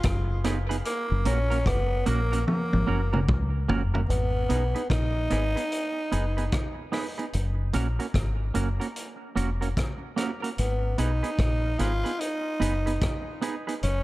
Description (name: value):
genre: dub reggae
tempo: 74 BPM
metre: 4/4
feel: swing 63% on 16ths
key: G# dorian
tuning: A4 = 439 Hz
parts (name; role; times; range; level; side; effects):
- growling tenor saxophone; melody; 0.0-14.0 s; A#3 to E#4; -31 LUFS; equal; dub echo
- deep dub fingered electric bass; bass; 0.0-14.0 s; E#1 to C#2; -26 LUFS; equal; none
- vintage drum kit; drums; 0.0-14.0 s; hi-hat, kick drum, rim click, toms; -30 LUFS; equal; none
- semi-hollow electric guitar; accompaniment; 0.4-13.7 s; A#3 to B4; -32 LUFS; right 5 dB; spring reverb, dub echo
room: little or no reverb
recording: dark, warm production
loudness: -24 LUFS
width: side -18 dB against mid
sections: 0.0-4.1 A section; 4.1-14.0 B section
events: drum fill 2.5-4.1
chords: 0.0 G#m; 0.9 F#; 4.1 G#m; 7.3 F#; 10.6 G#m